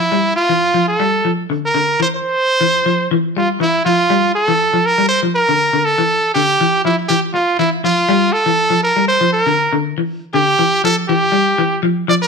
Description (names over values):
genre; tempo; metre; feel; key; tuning
afrobeat; 120 BPM; 4/4; straight; unclear; A4 = 440 Hz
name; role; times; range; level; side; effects
brilliant trumpet; melody; 0.0-12.3 s; E4 to D5; -14 LUFS; right 2 dB; slapback echo
semi-hollow electric guitar; arpeggios; 0.0-12.3 s; D3 to G3; -18 LUFS; left 4 dB; none
room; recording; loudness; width
moderate large studio reverb, RT60 0.9 s; none; -13 LUFS; side -5 dB against mid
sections
0.0-12.1 A section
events
none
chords
0.0 Dmadd9; 2.1 Cadd11/E; 4.1 Dmadd9